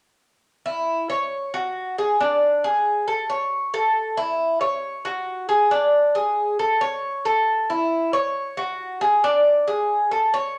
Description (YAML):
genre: latin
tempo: 136 BPM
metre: 4/4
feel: straight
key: A major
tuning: A4 = 440 Hz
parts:
  - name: Cuban tres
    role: solo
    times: 0.7-10.6 s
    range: D4 to C#5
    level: -22 LUFS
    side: equal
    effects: none
room: moderate large studio reverb, RT60 0.9 s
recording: none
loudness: -22 LUFS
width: mono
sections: 0.4-10.6 A section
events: none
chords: none